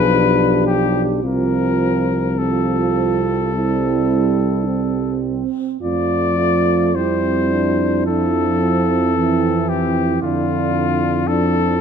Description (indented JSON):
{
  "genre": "classical, hymn-like piece for brass band",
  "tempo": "52-57 BPM",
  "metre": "4/4",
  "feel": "rubato",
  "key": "F major",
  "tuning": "A4 = 441 Hz",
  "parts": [
    { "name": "clear cornet", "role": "melody", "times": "0.0-11.8 s", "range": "F4 to D5", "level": "-21 LUFS", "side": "left 9 dB", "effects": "none" },
    { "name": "dark French horn section", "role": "second line", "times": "0.0-11.8 s", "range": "C4 to G4", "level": "-21 LUFS", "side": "right 11 dB", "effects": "none" },
    { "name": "mellow trombone section", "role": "accompaniment", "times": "0.0-11.8 s", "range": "A3 to D4", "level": "-23 LUFS", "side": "left 1 dB", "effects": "none" },
    { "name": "warm trombone", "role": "accompaniment", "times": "0.0-11.8 s", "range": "D3 to G3", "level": "-24 LUFS", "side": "right 3 dB", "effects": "none" },
    { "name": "mellow tuba", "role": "bass", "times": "0.0-11.8 s", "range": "B1 to F2", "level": "-21 LUFS", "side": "equal", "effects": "none" }
  ],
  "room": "light reverb",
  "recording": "close, detailed microphones",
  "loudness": "-15 LUFS",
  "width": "side -7 dB against mid",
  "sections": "0.0-11.8 A section",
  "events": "none",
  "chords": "0.0 Bdim; 1.2 F/C; 3.5 C; 5.8 F; 10.2 Bb/F (rootless)"
}